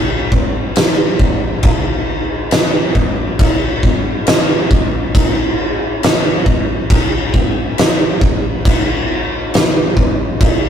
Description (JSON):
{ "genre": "metal", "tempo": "68 BPM", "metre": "4/4", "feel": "straight", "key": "none", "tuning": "none", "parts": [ { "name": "oversized low-tuned drum kit", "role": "drums", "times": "0.3-10.6 s", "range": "crash cymbal, kick drum, snare drum", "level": "-12 LUFS", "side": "equal", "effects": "none" } ], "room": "little or no reverb", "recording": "rough rehearsal-room recording, tube saturation", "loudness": "-12 LUFS", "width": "side -8 dB against mid", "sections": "0.0-10.7 A section", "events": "none", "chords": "none", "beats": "0.76 | 1.63 2.51 3.39 4.26 | 5.14 6.02 6.90 7.78 | 8.66 9.54 10.41" }